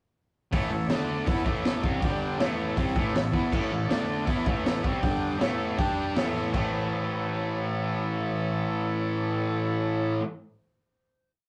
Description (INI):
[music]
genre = garage rock duo or trio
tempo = 159 BPM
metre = 4/4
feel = straight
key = A major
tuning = A4 = 440 Hz
[part]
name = combo organ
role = sustained chords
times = 0.5-10.1 s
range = D4 to D5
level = -37 LUFS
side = equal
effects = none
[part]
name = fuzz guitar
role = riff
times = 0.5-10.2 s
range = G2 to G4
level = -30 LUFS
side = equal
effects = distortion
[part]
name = raw garage drum kit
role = drums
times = 0.5-6.6 s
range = crash cymbal, hi-hat, kick drum, snare drum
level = -31 LUFS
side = equal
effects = none
[sound]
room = moderate small room reverb, RT60 0.5 s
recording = rough rehearsal-room recording, warm saturation, cassette tape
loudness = -28 LUFS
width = mono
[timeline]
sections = 0.5-6.5 riff; 6.5-9.6 final chord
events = none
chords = 0.5 A; 0.9 D5; 1.3 A; 2.0 G5; 2.4 A; 3.9 D5; 4.3 A; 5.0 G5; 5.4 A; 5.8 G5; 6.2 A